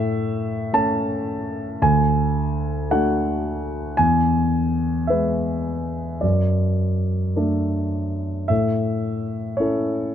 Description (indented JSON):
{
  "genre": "classical, contemporary piece for solo grand piano",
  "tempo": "54 BPM (dotted quarters)",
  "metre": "6/8",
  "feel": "uneven beats, rubato",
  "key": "A major",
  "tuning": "A4 = 443 Hz",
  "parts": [
    { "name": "warm concert grand piano", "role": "solo", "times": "0.0-10.1 s", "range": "D2 to A5", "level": "-19 LUFS", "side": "equal", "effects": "none" }
  ],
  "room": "little or no reverb",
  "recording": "close, detailed microphones",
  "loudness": "-19 LUFS",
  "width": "side -9 dB against mid",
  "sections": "0.0-8.5 A section; 8.5-10.1 A section",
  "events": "none",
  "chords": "0.0 A; 1.8 D; 4.0 E; 6.2 D/F#; 8.5 A"
}